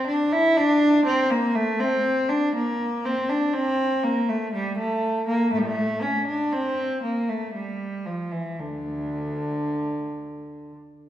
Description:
classical, baroque-style suite movement for unaccompanied cello; 54-62 BPM; 3/4; rubato; D minor; A4 = 441 Hz
warm cello; solo; 0.0-10.7 s; D2 to E4; -22 LUFS; equal
wet recital hall reverb, RT60 1.4 s; recorded in a church or concert hall; -22 LUFS; side -12 dB against mid
0.0-11.1 A section

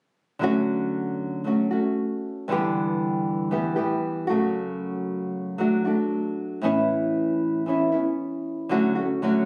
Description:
pop; 116 BPM; 4/4; swing 55% on 16ths; D major; A4 = 440 Hz
nylon-string guitar; accompaniment; 0.4-9.5 s; F#2 to G4; -25 LUFS; equal
moderate studio reverb, RT60 0.6 s; recorded on a phone in the room, club reverb; -25 LUFS; mono
0.4-8.7 A section
0.4 Dmaj7; 2.5 G6; 4.3 Dmaj7/F#; 6.6 Aadd9; 8.7 Dmaj7

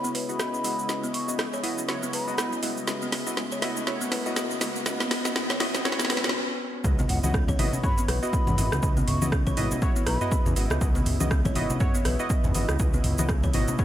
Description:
afro house; 121 BPM; 4/4; swing 58% on 16ths; C# minor; A4 = 440 Hz
breathy mellow concert flute; melody; 0.0-2.5, 7.1-10.5 s; F#5 to C#6; -34 LUFS; equal; tape echo
warm analog pad; sustained chords; 0.0-13.8 s; C#3 to D#5; -38 LUFS; right 1 dB; chorus, tremolo, sidechain pumping
buzzing kalimba; arpeggios; 0.0-13.8 s; G#3 to C#5; -33 LUFS; left 2 dB; sidechain pumping, low-pass filter, tape echo
warm analog keys; stabs; 0.0-13.8 s; B3 to D#5; -33 LUFS; equal; chorus, vintage 12-bit sampler grit, sidechain pumping, low-pass filter, tape echo
afro-pop drum kit; drums; 0.0-13.8 s; hi-hat, rim click, shaker, snare drum, toms; -30 LUFS; right 1 dB; overdrive
riser; sound effects; 1.6-6.3 s; -36 LUFS; equal
smooth synth bass; bass; 6.8-13.7 s; G#1 to E2; -27 LUFS; equal; sidechain pumping
electronic kick drum; drums; 6.8-13.8 s; -25 LUFS; equal; overdrive
congas; percussion; 7.0-13.8 s; -32 LUFS; left 2 dB
light reverb, digital ambience; -23 LUFS; side -12 dB against mid
0.0-6.8 A section; 6.8-13.8 B section
build-up 0.0-6.8; drum fill 0.0-6.3; filter sweep on synth keys 0.0-6.8; riser 1.6-6.3; stop 6.3-6.8; drop 6.8-13.8
0.0 C#m11

